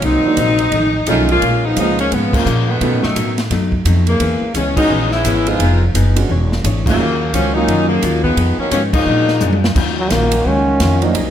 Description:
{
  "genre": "jazz, big band swing",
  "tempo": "172 BPM",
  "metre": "4/4",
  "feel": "swing 62% on 8ths",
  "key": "Eb minor",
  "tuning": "A4 = 439 Hz",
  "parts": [
    { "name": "mellow saxophone section", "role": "melody", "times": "0.0-9.6 s", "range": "B2 to F4", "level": "-16 LUFS", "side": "left 1 dB", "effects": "none" },
    { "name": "hollow-body jazz guitar", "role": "accompaniment", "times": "0.0-11.3 s", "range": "F2 to C#5", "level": "-22 LUFS", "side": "left 4 dB", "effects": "none" },
    { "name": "upright bass", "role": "bass", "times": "0.0-11.3 s", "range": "E1 to B2", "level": "-17 LUFS", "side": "equal", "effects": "none" },
    { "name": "swinging big-band drum kit", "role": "drums", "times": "0.0-11.3 s", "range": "crash cymbal, hi-hat, kick drum, ride cymbal, snare drum, toms", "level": "-22 LUFS", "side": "equal", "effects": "none" },
    { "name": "clear concert grand piano", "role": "accompaniment", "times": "0.2-8.0, 11.0-11.1 s", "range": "D3 to G#4", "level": "-22 LUFS", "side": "right 5 dB", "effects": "none" },
    { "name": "clear trombone section", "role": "sustained chords", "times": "9.8-11.3 s", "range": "C3 to Gb4", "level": "-25 LUFS", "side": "equal", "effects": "none" },
    { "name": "brilliant trombone", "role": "melody", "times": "10.0-11.0 s", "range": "Gb3 to Db4", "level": "-17 LUFS", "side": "right 1 dB", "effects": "none" }
  ],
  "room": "moderate recital hall reverb, RT60 1.3 s",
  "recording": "none",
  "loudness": "-13 LUFS",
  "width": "side -10 dB against mid",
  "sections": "0.0-9.8 A section; 9.8-11.3 B section",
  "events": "band accent 2.3, 4.7, 6.8, 8.9; drum fill 9.4-9.8; trombone solo 9.8-11.3",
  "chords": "0.0 Cm7b5; 0.7 F7alt; 1.4 Bbm7; 2.8 B7; 4.2 E6; 5.6 Fm7b5; 6.3 E13; 7.0 Ebm9; 8.4 Fm7b5; 9.1 Bb7b13; 9.8 Ebm9"
}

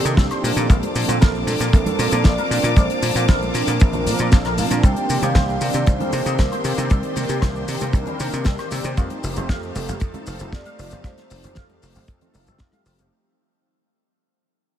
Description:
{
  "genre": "nu-disco, nu disco",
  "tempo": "116 BPM",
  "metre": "4/4",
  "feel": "straight",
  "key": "unclear",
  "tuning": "A4 = 443 Hz",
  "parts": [
    { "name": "vibraphone with soft mallets", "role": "melody", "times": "0.0-12.3 s", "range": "G4 to G5", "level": "-28 LUFS", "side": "right 1 dB", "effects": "diffuse ambient delay" },
    { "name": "warm analog pad", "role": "accompaniment", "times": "0.0-13.1 s", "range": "Eb3 to A5", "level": "-26 LUFS", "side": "right 1 dB", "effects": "chorus, cassette tape, ping-pong delay" },
    { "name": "clear studio string section", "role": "sustained chords", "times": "0.0-13.1 s", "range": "Bb3 to D6", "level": "-31 LUFS", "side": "left 2 dB", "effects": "sidechain pumping" },
    { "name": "electric guitar with an envelope filter", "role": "riff", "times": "0.0-13.0 s", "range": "F3 to F5", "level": "-30 LUFS", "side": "left 2 dB", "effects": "wide subtle chorus" },
    { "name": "dry thumbed slap bass", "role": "bass", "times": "0.0-13.1 s", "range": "F1 to C3", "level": "-24 LUFS", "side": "equal", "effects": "tube saturation" },
    { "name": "damped 70s drum kit", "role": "drums", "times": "0.1-13.1 s", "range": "hi-hat, rim click, shaker, snare drum", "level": "-28 LUFS", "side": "left 2 dB", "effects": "small room ambience" },
    { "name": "maracas and congas", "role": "percussion", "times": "0.1-13.1 s", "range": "none", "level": "-32 LUFS", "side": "right 2 dB", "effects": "none" },
    { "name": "kick drum", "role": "drums", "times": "0.2-12.7 s", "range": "none", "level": "-15 LUFS", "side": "equal", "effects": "small room ambience" }
  ],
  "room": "light reverb",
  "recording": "none",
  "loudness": "-17 LUFS",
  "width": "side -10 dB against mid",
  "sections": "0.0-13.1 A section",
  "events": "drop 0.0-13.1; fade-out 4.8-13.1",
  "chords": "0.4 Bbmaj7; 4.8 Cm7; 9.0 F7"
}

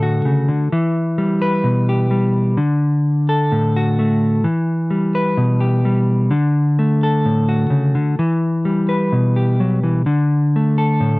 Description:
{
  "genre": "highlife",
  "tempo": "128 BPM",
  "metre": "4/4",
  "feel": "straight",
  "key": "D major",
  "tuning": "A4 = 440 Hz",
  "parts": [
    { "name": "clean electric guitar", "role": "solo", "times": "0.0-11.2 s", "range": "A2 to B4", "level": "-14 LUFS", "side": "equal", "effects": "none" }
  ],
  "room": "moderate booth ambience, RT60 0.2 s",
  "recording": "dry, close 1970s-style studio recording",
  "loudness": "-14 LUFS",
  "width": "side -23 dB against mid",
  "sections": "0.0-11.2 A section",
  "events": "none",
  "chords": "0.0 D; 0.7 Em; 2.6 D; 4.5 Em; 6.3 D; 8.2 Em; 10.1 D5"
}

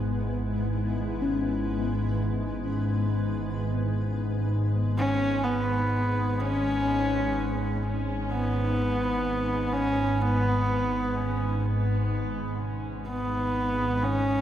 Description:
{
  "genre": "dark ambient drone",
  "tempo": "free time",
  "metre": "none",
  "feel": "none",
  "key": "unclear",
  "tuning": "A4 = 440 Hz",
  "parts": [
    { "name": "granular cloud pad", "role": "sustained chords", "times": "0.0-12.1 s", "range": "G#3 to B4", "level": "-37 LUFS", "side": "left 2 dB", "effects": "built-in reverb" },
    { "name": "gamelan-type bossed gongs", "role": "arpeggios", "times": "0.0-14.4 s", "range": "B2 to C#4", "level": "-37 LUFS", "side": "left 3 dB", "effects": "none" },
    { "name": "organ-like drone", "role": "drone", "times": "0.0-14.4 s", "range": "G#1 to G#2", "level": "-27 LUFS", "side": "equal", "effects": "ensemble chorus, built-in reverb" },
    { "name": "rich horsehead fiddle", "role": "melody", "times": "5.0-14.4 s", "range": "B3 to C#4", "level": "-27 LUFS", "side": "equal", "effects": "tape echo" }
  ],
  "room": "moderate spring reverb, RT60 2.5 s",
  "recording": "echo-heavy mix",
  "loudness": "-25 LUFS",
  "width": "side -10 dB against mid",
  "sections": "0.0-12.1 A section; 12.1-14.4 B section",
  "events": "fade-out on ambient pad 0.0-12.1; fade-out on kettle gongs 0.0-12.1",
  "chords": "0.0 E/G#; 12.1 G#m"
}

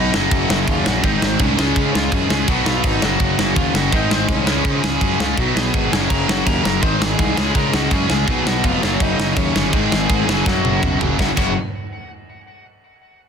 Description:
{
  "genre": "punk rock",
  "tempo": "165 BPM",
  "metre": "4/4",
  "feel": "straight",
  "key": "F# major",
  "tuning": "A4 = 444 Hz",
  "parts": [
    { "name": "smooth overdriven lead guitar", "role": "melody", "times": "0.0-11.5 s", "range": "B#3 to B#5", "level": "-24 LUFS", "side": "left 1 dB", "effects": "tape echo" },
    { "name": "crunchy overdriven guitar", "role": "riff", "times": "0.0-11.5 s", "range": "F#2 to C#4", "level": "-23 LUFS", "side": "left 14 dB", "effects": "none" },
    { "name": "distorted electric guitar", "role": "riff", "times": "0.0-11.5 s", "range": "F#2 to C#4", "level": "-24 LUFS", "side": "right 14 dB", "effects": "overdrive" },
    { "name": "heavy high-gain guitar", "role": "riff", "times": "0.0-11.5 s", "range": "F#2 to F#4", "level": "-25 LUFS", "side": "equal", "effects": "distortion" },
    { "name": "fuzz picked electric bass", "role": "bass", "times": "0.0-11.5 s", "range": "E#1 to C#3", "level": "-23 LUFS", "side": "right 1 dB", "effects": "overdrive" },
    { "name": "tight metal drum kit", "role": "drums", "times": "0.1-11.5 s", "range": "crash cymbal, kick drum, snare drum, toms", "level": "-20 LUFS", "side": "right 1 dB", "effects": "none" }
  ],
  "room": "little or no reverb",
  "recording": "dense, heavily limited modern master",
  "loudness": "-15 LUFS",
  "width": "side -7 dB against mid",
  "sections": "0.0-11.2 A section; 11.2-12.6 B section",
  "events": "drum fill 10.5-11.2",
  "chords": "0.1 F#; 1.0 G#; 1.6 C#; 2.5 B; 3.0 F#; 3.9 G#; 4.5 C#; 5.4 B; 5.9 F#; 6.8 G#; 7.4 C#; 8.3 B; 8.8 F#; 9.7 G#; 10.3 F#"
}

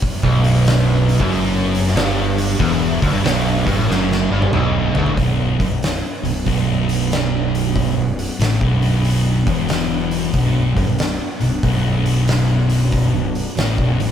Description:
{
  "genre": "stoner and doom metal",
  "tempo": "93 BPM",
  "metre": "4/4",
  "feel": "swing 66% on 8ths",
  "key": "B minor",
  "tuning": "A4 = 441 Hz",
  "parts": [
    { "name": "string machine, violas", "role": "sustained chords", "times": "0.0-14.1 s", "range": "F#3 to D4", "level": "-28 LUFS", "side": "left 2 dB", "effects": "ensemble chorus" },
    { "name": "oversized low-tuned drum kit", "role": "drums", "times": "0.0-14.1 s", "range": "hi-hat, kick drum, snare drum, toms", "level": "-22 LUFS", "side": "equal", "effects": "none" },
    { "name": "distorted electric guitar", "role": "riff", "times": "0.2-5.2 s", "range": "B1 to A2", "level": "-21 LUFS", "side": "equal", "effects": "overdrive" },
    { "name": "thick fuzz guitar", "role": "riff", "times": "0.2-14.1 s", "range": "B1 to A2", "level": "-19 LUFS", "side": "right 4 dB", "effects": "distortion" },
    { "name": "fuzz fingered electric bass", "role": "bass", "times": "0.2-14.1 s", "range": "B0 to A1", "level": "-25 LUFS", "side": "equal", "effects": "overdrive" },
    { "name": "thick fuzz guitar", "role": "riff", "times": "0.3-14.1 s", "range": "B1 to A2", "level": "-22 LUFS", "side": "left 10 dB", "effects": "distortion" }
  ],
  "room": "moderate studio ambience, RT60 0.5 s",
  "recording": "band playing live in one room",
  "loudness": "-15 LUFS",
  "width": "side -9 dB against mid",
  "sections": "0.0-5.2 A section; 5.2-14.1 B section",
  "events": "drum fill 3.9-5.2",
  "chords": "0.0 Bm"
}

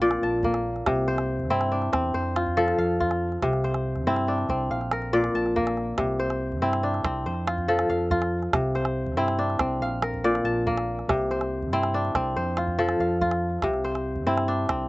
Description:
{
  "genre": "west african traditional, West African string and xylophone music",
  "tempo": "94 BPM (dotted quarters)",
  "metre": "12/8",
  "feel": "straight",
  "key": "C mixolydian",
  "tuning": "A4 = 439 Hz",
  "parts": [
    { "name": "kora", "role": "arpeggios", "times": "0.0-14.9 s", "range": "Bb2 to A5", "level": "-24 LUFS", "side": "left 1 dB", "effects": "none" },
    { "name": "overdriven fingered electric bass", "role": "bass", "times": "0.0-14.9 s", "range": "Bb1 to G2", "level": "-31 LUFS", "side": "right 1 dB", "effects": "none" },
    { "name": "calabash", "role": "percussion", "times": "0.1-14.8 s", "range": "none", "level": "-29 LUFS", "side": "right 3 dB", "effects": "none" }
  ],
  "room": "little or no reverb",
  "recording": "recorded outdoors, with no room sound, nothing above 7.9 kHz",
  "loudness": "-23 LUFS",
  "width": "side -20 dB against mid",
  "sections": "0.0-14.9 A section",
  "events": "none",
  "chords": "0.0 Bb; 0.9 C; 2.1 F; 3.4 C; 4.7 Bb; 6.0 C; 7.3 F; 8.5 C; 9.8 Bb; 11.1 C; 12.4 F; 13.6 C"
}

